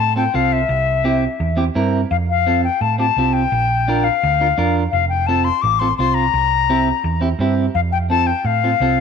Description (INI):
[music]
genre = latin, cumbia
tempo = 170 BPM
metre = 4/4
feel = straight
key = F major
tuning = A4 = 440 Hz
[part]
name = reedy silver concert flute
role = melody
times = 0.0-9.0 s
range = E5 to D6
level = -18 LUFS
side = left 10 dB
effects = none
[part]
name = hollow-body short-scale picked electric bass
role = bass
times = 0.0-9.0 s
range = F1 to A2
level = -20 LUFS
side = right 3 dB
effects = none
[part]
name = clean electric guitar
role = accompaniment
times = 0.2-9.0 s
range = C4 to C5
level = -21 LUFS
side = right 4 dB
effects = none
[sound]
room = light reverb, small room ambience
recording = none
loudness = -15 LUFS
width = side -6 dB against mid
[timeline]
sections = 0.0-9.0 A section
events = none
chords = 0.0 F; 0.7 C7; 2.1 F; 3.5 Bb; 4.9 F; 6.3 C7; 7.8 F